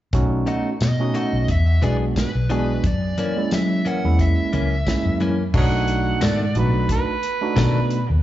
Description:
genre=straight-eighth soul blues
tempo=89 BPM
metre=4/4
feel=swing 55% on 16ths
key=unclear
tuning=A4 = 440 Hz
part: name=overdriven tine electric piano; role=accompaniment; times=0.1-8.0 s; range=G#3 to F#4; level=-25 LUFS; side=right 4 dB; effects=slapback echo
part: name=vintage muted fingered electric bass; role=bass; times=0.1-8.2 s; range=B1 to F#3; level=-20 LUFS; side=equal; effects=none
part: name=warm soul drum kit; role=drums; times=0.1-8.1 s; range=crash cymbal, hi-hat, kick drum, snare drum, tambourine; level=-24 LUFS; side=equal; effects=none
part: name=direct-recorded clean electric guitar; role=stabs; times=0.5-7.8 s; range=F#2 to G#4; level=-27 LUFS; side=left 4 dB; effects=tremolo, slapback echo, analog delay
part: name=dark smooth lead guitar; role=melody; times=0.8-5.2 s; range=B4 to F#5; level=-29 LUFS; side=right 1 dB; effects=overdrive, slapback echo
part: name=overdriven harmonica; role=second line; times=5.6-8.2 s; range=B4 to F#5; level=-25 LUFS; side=right 4 dB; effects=slapback echo
room=little or no reverb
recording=live gig heard through the venue's PA, club reverb, nothing above 7.5 kHz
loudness=-18 LUFS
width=side -13 dB against mid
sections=0.1-5.5 A section; 5.5-8.2 B section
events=harmonica solo 5.5-8.2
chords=0.1 B7; 1.5 E7; 2.8 F#7; 5.5 B7#9

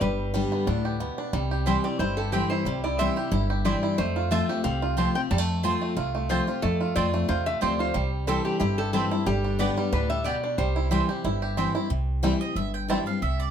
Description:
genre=bluegrass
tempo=182 BPM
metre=4/4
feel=swing 54% on 8ths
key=C major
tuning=A4 = 440 Hz
part: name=lap resonator guitar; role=melody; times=0.0-11.5 s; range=G4 to A5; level=-31 LUFS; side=left 2 dB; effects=none
part: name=picked steel-string acoustic guitar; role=accompaniment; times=0.0-13.5 s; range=F2 to G4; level=-28 LUFS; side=left 4 dB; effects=none
part: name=bluegrass banjo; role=arpeggios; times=0.0-13.0 s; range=G3 to G4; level=-30 LUFS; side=right 4 dB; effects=none
part: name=upright bass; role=bass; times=0.0-13.5 s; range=G1 to F2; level=-29 LUFS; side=right 1 dB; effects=none
part: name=mandolin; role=stabs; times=1.7-13.5 s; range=B3 to A5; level=-31 LUFS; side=right 6 dB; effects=none
room=light reverb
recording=none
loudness=-23 LUFS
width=side -8 dB against mid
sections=0.0-11.9 A section; 11.9-13.5 B section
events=mandolin solo 11.9-13.5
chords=0.0 G; 1.3 C; 4.0 F; 8.0 C; 9.3 G; 10.6 C

